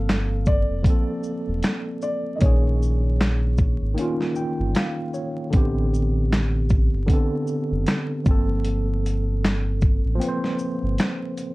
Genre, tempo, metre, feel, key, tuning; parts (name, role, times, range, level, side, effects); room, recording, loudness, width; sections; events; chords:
lo-fi hip hop; 77 BPM; 4/4; swing 57% on 16ths; A4 = 441 Hz
felt-muted upright piano; melody; 0.0-5.1 s; Db5 to F5; -32 LUFS; left 2 dB; low-pass filter, tape echo
tine electric piano; accompaniment; 0.0-11.5 s; D3 to G5; -26 LUFS; equal; overdrive, fast stereo tremolo, cassette tape, low-pass filter
sub bass with octave; bass; 0.0-11.0 s; E1 to Bb1; -23 LUFS; equal
dusty soul sampler-style drum kit; drums; 0.1-11.5 s; handclaps, hi-hat, kick drum, shaker, snare drum; -21 LUFS; equal
light reverb; dark, warm production, vinyl crackle; -20 LUFS; side -20 dB against mid
0.0-11.5 A section
0.0 Gm11; 2.4 Bbm7; 5.5 Am11; 8.3 Gm11